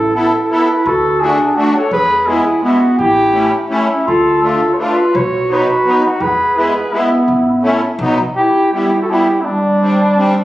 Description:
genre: alpine folk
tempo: 168 BPM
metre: 3/4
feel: swing 55% on 8ths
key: A major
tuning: A4 = 440 Hz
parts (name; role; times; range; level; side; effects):
- warm flugelhorn; melody; 0.0-10.4 s; D4 to C#5; -15 LUFS; equal; analog delay
- dark clarinet; second line; 0.0-10.4 s; G3 to A4; -15 LUFS; right 1 dB; none
- upright bass; bass; 0.0-8.2 s; A1 to E2; -26 LUFS; equal; none
- musette accordion; accompaniment; 0.1-10.4 s; F#3 to A4; -17 LUFS; left 1 dB; none
room: moderate recital hall reverb, RT60 1.4 s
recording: recorded on a phone in the room, club reverb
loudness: -11 LUFS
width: side -15 dB against mid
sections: 0.0-8.4 A section; 8.4-10.4 B section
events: none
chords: 0.0 Asus2; 0.9 D; 1.9 E; 3.0 A7; 4.1 Dm; 5.1 B; 6.2 E; 7.3 A; 8.0 B; 8.4 Em; 9.4 Csus2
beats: 0.15 0.51 | 0.86 1.21 1.56 | 1.91 2.27 2.62 | 2.98 3.34 3.70 | 4.07 4.43 4.79 | 5.15 5.50 5.86 | 6.21 6.56 6.92 | 7.27 7.63 8.00 | 8.36 8.73 9.09 | 9.45 9.81 10.17

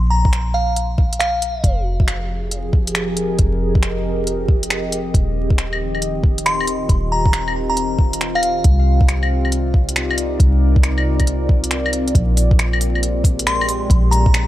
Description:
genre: future garage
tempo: 137 BPM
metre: 4/4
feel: swing 66% on 16ths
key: unclear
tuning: A4 = 441 Hz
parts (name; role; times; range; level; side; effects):
- soft 808-style bass; bass; 0.0-14.5 s; Eb1 to C2; -19 LUFS; equal; sidechain pumping
- glassy synth bell; melody; 0.1-1.7, 6.5-8.7, 13.5-14.5 s; F5 to C6; -22 LUFS; equal; chorus, tape echo
- electronic kick drum; drums; 0.2-14.3 s; none; -15 LUFS; equal; none
- organic electronic drum kit; drums; 0.3-14.5 s; claves, finger snaps, hi-hat; -22 LUFS; left 1 dB; none
- warbly tape-like pad; sustained chords; 2.2-14.5 s; Bb2 to Eb5; -23 LUFS; equal; chorus, built-in reverb, sidechain pumping
room: light reverb, digital ambience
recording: dry, gritty hardware recording, vinyl crackle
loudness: -15 LUFS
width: side -14 dB against mid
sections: 0.0-12.1 A section; 12.1-14.5 B section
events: none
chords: 0.0 Bb5; 1.6 Fm11; 5.1 Eb69; 8.6 Cm11; 12.1 Bb13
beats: 0.32 0.76 1.20 | 1.64 2.08 2.51 2.95 | 3.39 3.83 4.27 4.70 | 5.14 5.58 6.02 6.46 | 6.89 7.33 7.77 8.21 | 8.64 9.08 9.52 9.96 | 10.40 10.84 11.27 11.71 | 12.15 12.59 13.03 13.46 | 13.90 14.34

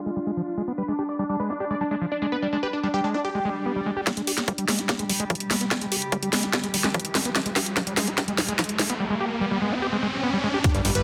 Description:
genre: psychedelic trance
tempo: 146 BPM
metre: 4/4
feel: straight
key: unclear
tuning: A4 = 440 Hz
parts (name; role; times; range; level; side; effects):
- supersaw stab; melody; 0.0-4.0, 10.6-11.0 s; G3 to D5; -31 LUFS; equal; phaser, cassette tape, sidechain pumping, tape echo
- evolving wavetable pad; sustained chords; 0.0-9.0 s; G3 to G4; -35 LUFS; equal; chorus, built-in reverb, sidechain pumping
- overdriven acid bass; riff; 0.1-11.0 s; F3 to G4; -31 LUFS; equal; distortion, sidechain pumping, tape echo
- swell, riser and impact; sound effects; 3.5-11.0 s; none; -33 LUFS; equal; none
- drum and bass drum kit; drums; 4.1-11.0 s; hi-hat, snare drum; -27 LUFS; equal; overdrive
- electronic kick drum; drums; 4.1-10.7 s; none; -27 LUFS; equal; overdrive, high-pass filter on kick
- fat analog bass; bass; 10.7-11.0 s; G1; -27 LUFS; equal; none
room: moderate digital room reverb, RT60 1.3 s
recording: dense, heavily limited modern master, low-pass filter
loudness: -25 LUFS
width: mono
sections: 0.0-4.1 A section; 4.1-10.6 B section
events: filter sweep on acid bass 0.0-4.1, 4.1-10.6; filter sweep 0.0-4.1; swell 3.5-4.1; build-up 4.1-10.6; drum fill 4.1-9.0; riser 4.1-10.6; impact 10.6-11.0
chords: 0.0 G5; 4.1 Fmadd9 (rootless)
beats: 0.37 | 0.78 1.19 1.60 2.01 | 2.42 2.83 3.25 3.66 | 4.07 4.48 4.89 5.30 | 5.71 6.12 6.53 6.94 | 7.36 7.77 8.18 8.59 | 9.00 9.41 9.82 10.23 | 10.64

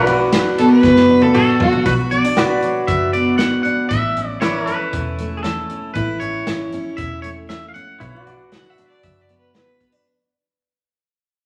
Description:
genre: honky-tonk and classic country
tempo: 117 BPM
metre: 4/4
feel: straight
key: B minor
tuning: A4 = 442 Hz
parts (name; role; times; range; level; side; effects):
- twangy electric guitar; melody; 0.0-9.5 s; G#4 to F#5; -25 LUFS; equal; none
- picked steel-string acoustic guitar; accompaniment; 0.0-10.1 s; E2 to F#4; -20 LUFS; equal; none
- pedal steel guitar; sustained chords; 0.0-10.0 s; E4 to D5; -24 LUFS; equal; none
- vintage muted fingered electric bass; bass; 0.0-9.8 s; E1 to B1; -29 LUFS; equal; none
- natural country drum kit; drums; 0.1-9.9 s; hi-hat, kick drum, ride cymbal, snare drum, toms; -25 LUFS; equal; none
- clear fiddle; second line; 0.6-1.9, 8.5-9.9 s; F#4 to F#5; -20 LUFS; equal; none
room: wet large studio reverb, RT60 1.2 s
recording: vinyl crackle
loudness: -17 LUFS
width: mono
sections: 0.0-1.9 A section; 1.9-10.1 B section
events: drum fill 0.8-1.9; fade-out 1.9-10.1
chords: 0.0 Bm; 3.9 A; 8.0 Bm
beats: 0.32 0.83 1.34 | 1.86 2.37 2.88 3.39 | 3.91 4.42 4.93 5.45 | 5.96 6.47 6.98 7.50 | 8.01 8.52 9.04 9.55

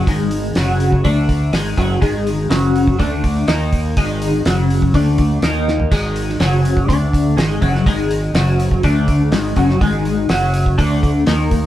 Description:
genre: psychedelic rock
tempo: 123 BPM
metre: 4/4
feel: straight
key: unclear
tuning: A4 = 437 Hz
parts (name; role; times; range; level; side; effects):
- twelve-string electric guitar; riff; 0.0-11.7 s; Gb2 to Eb4; -16 LUFS; left 1 dB; phaser
- growling fingered electric bass; bass; 0.0-11.7 s; Gb1 to Eb2; -20 LUFS; equal; overdrive
- cloth-damped thuddy drum kit; drums; 0.1-11.6 s; hi-hat, kick drum, snare drum, splash cymbal, toms; -20 LUFS; right 1 dB; none
room: moderate stone room reverb, RT60 1.1 s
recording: band playing live in one room, faint mains hum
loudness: -14 LUFS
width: side -13 dB against mid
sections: 0.0-11.7 A section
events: drum fill 5.7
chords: 0.0 Ab5; 0.6 Gb5; 1.0 D5; 1.5 Ab5; 2.5 Gb5; 3.0 D5; 3.5 Eb5; 4.0 Ab5; 4.5 Gb5; 4.9 D5; 5.4 Eb5; 5.9 Ab5; 6.4 Gb5; 6.9 D5; 7.4 Ab5; 8.3 Gb5; 8.8 D5; 9.3 Ab5; 10.3 Gb5; 10.8 D5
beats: | 0.07 0.56 1.05 1.53 | 2.02 2.51 2.99 3.48 | 3.96 4.45 4.94 5.42 | 5.91 6.39 6.88 7.37 | 7.86 8.34 8.83 9.32 | 9.80 10.29 10.78 11.27

